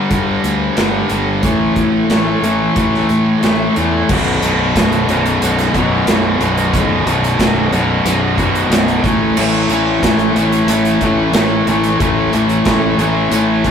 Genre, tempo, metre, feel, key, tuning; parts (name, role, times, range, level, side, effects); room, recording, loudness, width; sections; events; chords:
quiet-loud alternative rock; 91 BPM; 4/4; straight; B minor; A4 = 439 Hz
cranked stack guitar; riff; 0.0-13.7 s; B1 to A3; -15 LUFS; left 3 dB; overdrive
scooped high-gain guitar; riff; 0.0-13.7 s; B1 to A3; -19 LUFS; right 7 dB; distortion
fuzz fingered electric bass; bass; 0.1-13.7 s; B0 to A2; -21 LUFS; right 1 dB; overdrive
big rock drum kit; drums; 0.1-13.7 s; crash cymbal, hi-hat, kick drum, snare drum; -18 LUFS; right 1 dB
moderate studio reverb, RT60 0.5 s; rough rehearsal-room recording, warm saturation; -12 LUFS; side -7 dB against mid
0.0-4.1 A section; 4.1-13.7 B section
0.0 G5; 1.4 A5; 4.1 B5; 9.0 A5